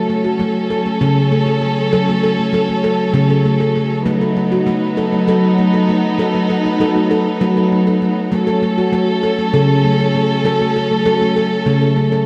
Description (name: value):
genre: world meditative, meditative tuned percussion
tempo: 197 BPM (eighths)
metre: 7/8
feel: straight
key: F# kumoi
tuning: A4 = 439 Hz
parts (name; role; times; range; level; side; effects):
- dark chamber string section; sustained chords; 0.0-12.3 s; F#3 to A4; -20 LUFS; equal; none
- handpan; arpeggios; 0.0-12.3 s; C#3 to A4; -17 LUFS; equal; none
room: wet echo chamber reverb, RT60 1.6 s, studio ambience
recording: none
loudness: -15 LUFS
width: mono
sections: 0.0-12.3 A section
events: none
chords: 0.0 F#m; 4.1 B/F#; 8.3 F#m